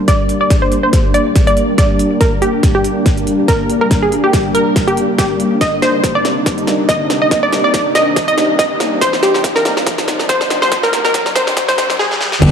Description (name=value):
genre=heavy wobble dubstep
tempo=141 BPM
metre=4/4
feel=swing 55% on 16ths, half-time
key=unclear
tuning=A4 = 438 Hz
part: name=supersaw pad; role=sustained chords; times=0.0-12.5 s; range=C3 to Eb4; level=-18 LUFS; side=equal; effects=sidechain pumping, low-pass filter
part: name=riser and sub drop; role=sound effects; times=1.3-12.5 s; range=none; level=-27 LUFS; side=equal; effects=none
part: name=wide unison pluck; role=melody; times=0.1-12.2 s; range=G4 to Eb5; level=-15 LUFS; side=equal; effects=cassette tape, ping-pong delay
part: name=big-room dance drum kit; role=drums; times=0.1-12.5 s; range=crash cymbal, hi-hat, snare drum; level=-20 LUFS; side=equal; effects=high-pass filter on hats, high-pass filter on toms, high-pass filter on snare, high-pass filter on cymbals
part: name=electronic kick drum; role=drums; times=0.1-12.5 s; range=none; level=-15 LUFS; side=equal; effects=none
part: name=thick fuzz guitar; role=stabs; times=12.4-12.5 s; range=G3 to G4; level=-14 LUFS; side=left 2 dB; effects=distortion
part: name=metallic wobble bass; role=bass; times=12.4-12.5 s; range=G1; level=-7 LUFS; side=equal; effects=chorus, overdrive
room=moderate lush hall reverb, RT60 1.9 s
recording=dark, warm production, high-pass filter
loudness=-11 LUFS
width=side -7 dB against mid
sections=0.0-12.4 A section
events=build-up 0.0-12.4; drum fill 0.0-12.0, 12.0-12.4; filter sweep on supersaw synth 0.0-12.4; filter sweep 0.0-12.4; riser 1.3-12.4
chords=0.0 Gm; 5.6 Cm7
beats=0.08 | 0.50 0.93 1.35 1.78 | 2.21 2.63 3.06 3.48 | 3.91 4.33 4.76 5.18 | 5.61 6.04 6.46 6.89 | 7.31 7.74 8.16 8.59 | 9.02 9.44 9.87 10.29 | 10.72 11.14 11.57 11.99 | 12.42